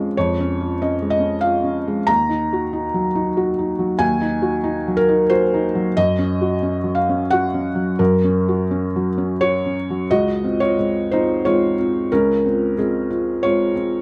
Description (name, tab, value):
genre	neoclassical minimalist piano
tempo	83-96 BPM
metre	3/4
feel	rubato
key	Db major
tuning	A4 = 440 Hz
part	felt-muted upright piano	solo	0.0-14.0 s	Db2 to Bb5	-19 LUFS	equal	none
room	light reverb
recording	none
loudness	-19 LUFS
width	mono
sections	0.0-10.1 A section; 10.1-14.0 B section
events	none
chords	0.0 Db/F; 2.1 Ebm; 6.0 Gb; 10.1 Dbmaj7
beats	| 0.15 0.79 1.42 | 2.09 2.73 3.37 | 4.01 4.65 5.30 | 5.96 6.62 7.29 | 7.99 8.71 9.41 | 10.10 10.76 11.43 | 12.09 12.75 13.44